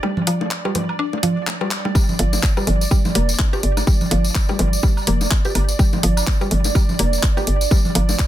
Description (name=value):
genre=minimal techno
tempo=125 BPM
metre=4/4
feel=swing 58% on 16ths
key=G minor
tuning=A4 = 440 Hz
part: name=mallet-like synth pluck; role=riff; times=0.0-8.0 s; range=F3 to G4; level=-25 LUFS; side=equal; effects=chorus, sidechain pumping, dub echo
part: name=bongos, congas and woodblock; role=percussion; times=0.0-8.2 s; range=none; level=-25 LUFS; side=left 1 dB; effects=digital delay
part: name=granular cloud pad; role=texture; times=0.0-8.3 s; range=D5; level=-28 LUFS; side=right 7 dB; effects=built-in reverb, sidechain pumping
part: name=house drum kit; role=drums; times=0.3-8.3 s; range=handclaps, hi-hat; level=-23 LUFS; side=left 1 dB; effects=none
part: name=electronic kick drum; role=drums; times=2.0-8.3 s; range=none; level=-17 LUFS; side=equal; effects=none
part: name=tambourine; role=percussion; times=2.0-8.3 s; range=none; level=-28 LUFS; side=left 2 dB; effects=none
part: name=hollow knocking FM bass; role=bass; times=2.2-8.1 s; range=F1 to G1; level=-19 LUFS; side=equal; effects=sidechain pumping
room=light reverb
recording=dense, heavily limited modern master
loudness=-16 LUFS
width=side -13 dB against mid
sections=0.0-8.3 A section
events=break 0.0-2.0; drum fill 1.7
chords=0.0 G5